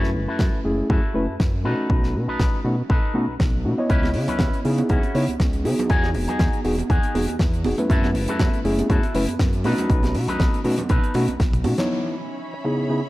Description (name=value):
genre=nu-disco, nu disco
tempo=120 BPM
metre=4/4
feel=swing 55% on 16ths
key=C# minor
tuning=A4 = 439 Hz
part: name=mellow reed electric piano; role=accompaniment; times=0.0-13.0 s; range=C#3 to D#5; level=-25 LUFS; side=equal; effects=sidechain pumping, tape echo
part: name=electric guitar with an envelope filter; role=riff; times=0.0-12.9 s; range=C#4 to B4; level=-29 LUFS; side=left 2 dB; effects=wide subtle chorus, low-pass filter, tape echo
part: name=fat analog bass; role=bass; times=0.0-11.7 s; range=E1 to C#3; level=-25 LUFS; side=equal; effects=tube saturation
part: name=damped 70s drum kit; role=drums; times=0.0-11.9 s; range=hi-hat, snare drum, toms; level=-31 LUFS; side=left 1 dB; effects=low-pass filter on hats, low-pass filter on toms, low-pass filter on snare, low-pass filter on room
part: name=electronic kick drum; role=drums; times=0.4-11.5 s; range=none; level=-21 LUFS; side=equal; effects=none
part: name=congas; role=percussion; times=4.0-11.9 s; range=none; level=-30 LUFS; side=right 4 dB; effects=none
part: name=warm symphonic violin section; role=sustained chords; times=11.9-13.1 s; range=C#4 to B5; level=-33 LUFS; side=right 1 dB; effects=sidechain pumping
room=light reverb, small room ambience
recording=dry, gritty hardware recording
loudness=-19 LUFS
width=side -18 dB against mid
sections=0.0-11.9 A section; 11.9-13.1 B section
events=drum fill 11.4-11.9; band accent 11.8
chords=0.0 F#m7; 1.6 B7; 3.9 C#m7; 5.9 Emaj9; 7.9 F#m7; 9.7 B7; 11.9 C#m7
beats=0.40 0.90 1.40 | 1.90 2.40 2.90 3.40 | 3.90 4.40 4.90 5.40 | 5.90 6.40 6.90 7.40 | 7.90 8.40 8.90 9.40 | 9.90 10.40 10.90 11.40 | 11.90 12.40 12.90